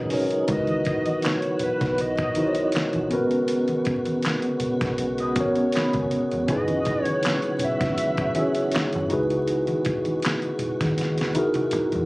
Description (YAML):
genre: R&B, neo-soul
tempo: 80 BPM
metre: 4/4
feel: swing 53% on 16ths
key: C# dorian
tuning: A4 = 440 Hz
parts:
  - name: electric guitar through a small old amp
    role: second line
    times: 0.0-0.5, 5.2-6.5 s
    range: B3 to D#5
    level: -34 LUFS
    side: equal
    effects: wide subtle chorus
  - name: mellow tine electric piano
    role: accompaniment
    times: 0.0-12.1 s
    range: B3 to C#5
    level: -24 LUFS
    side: equal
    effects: medium stereo tremolo
  - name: tonewheel organ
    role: sustained chords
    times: 0.0-12.1 s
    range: C#3 to F#4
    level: -32 LUFS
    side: equal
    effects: overdrive, chorus vibrato, slow rotary speaker
  - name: dusty soul sampler-style drum kit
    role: drums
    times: 0.1-12.1 s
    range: handclaps, hi-hat, kick drum, snare drum, toms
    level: -28 LUFS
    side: equal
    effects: none
  - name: congas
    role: percussion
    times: 0.1-12.1 s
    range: none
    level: -34 LUFS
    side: equal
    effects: none
  - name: hollow square lead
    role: melody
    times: 0.5-9.1 s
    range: B4 to E5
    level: -28 LUFS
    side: equal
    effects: chorus
  - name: deep dub fingered electric bass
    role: bass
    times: 0.5-12.1 s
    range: E1 to E2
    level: -31 LUFS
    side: equal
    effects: none
room: light reverb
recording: recorded on a phone in the room, club reverb, vinyl crackle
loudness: -21 LUFS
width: side -22 dB against mid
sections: 0.5-12.1 A section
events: drum fill 11.0-12.1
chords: 0.5 C#m11; 3.1 G#m11; 6.5 F#7sus4; 9.1 C#m7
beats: | 0.48 1.24 1.99 2.73 | 3.48 4.24 4.99 5.74 | 6.49 7.24 7.99 8.73 | 9.48 10.23 10.98 11.73